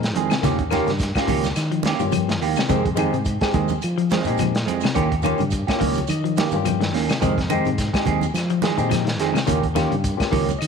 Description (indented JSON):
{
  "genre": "afrobeat",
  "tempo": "106 BPM",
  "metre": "4/4",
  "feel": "swing 56% on 16ths",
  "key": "unclear",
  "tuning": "A4 = 440 Hz",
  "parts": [
    { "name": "barky tine electric piano", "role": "accompaniment", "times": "0.0-10.7 s", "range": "Ab3 to G5", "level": "-27 LUFS", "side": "left 14 dB", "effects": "none" },
    { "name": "fingered electric bass", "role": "bass", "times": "0.0-10.7 s", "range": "Db2 to F3", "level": "-26 LUFS", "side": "equal", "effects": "none" },
    { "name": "crunchy breakbeat drum kit", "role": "drums", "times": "0.0-10.7 s", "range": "hi-hat, kick drum, snare drum", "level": "-25 LUFS", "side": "equal", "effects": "none" },
    { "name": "semi-hollow electric guitar", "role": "stabs", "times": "0.2-10.5 s", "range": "Eb3 to Ab4", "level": "-24 LUFS", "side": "right 10 dB", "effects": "phaser, slapback echo" },
    { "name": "congas", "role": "percussion", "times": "0.2-10.6 s", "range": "none", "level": "-30 LUFS", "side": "right 9 dB", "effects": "none" },
    { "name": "shekere", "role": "percussion", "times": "0.2-10.7 s", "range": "none", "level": "-36 LUFS", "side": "right 5 dB", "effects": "none" },
    { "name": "semi-hollow electric guitar", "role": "arpeggios", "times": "0.3-10.5 s", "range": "C3 to F3", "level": "-27 LUFS", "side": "left 11 dB", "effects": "none" },
    { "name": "claves", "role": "percussion", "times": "0.3-10.7 s", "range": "none", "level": "-36 LUFS", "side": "left 13 dB", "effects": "none" }
  ],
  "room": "light reverb, small room ambience",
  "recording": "1960s-style stereo with parts hard left and right",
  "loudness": "-18 LUFS",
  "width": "side -6 dB against mid",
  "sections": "0.0-10.7 A section",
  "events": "tine electric piano fill 5.5-7.2, 10.0-10.7",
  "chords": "0.4 Eb7; 2.7 Fm7; 5.0 Eb7; 7.2 Fm7; 9.5 Eb7"
}